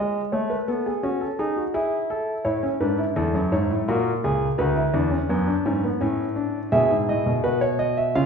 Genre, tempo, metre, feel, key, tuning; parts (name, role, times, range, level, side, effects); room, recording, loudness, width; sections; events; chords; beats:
classical, baroque-style 4-part fugue for grand piano; 84 BPM; 3/4; straight; A major; A4 = 435 Hz
warm concert grand piano; solo; 0.0-8.3 s; C#2 to E#5; -21 LUFS; equal
wet recital hall reverb, RT60 1.4 s; heard from further back in the room; -21 LUFS; side -6 dB against mid
0.0-8.3 A section
0.3 F#m/A; 1.8 E; 2.5 A; 3.9 F#/A#; 4.6 Bm/D; 6.0 A; 6.7 E
| 0.33 1.04 1.75 | 2.46 3.17 3.88 | 4.59 5.30 6.01 | 6.73 7.45 8.16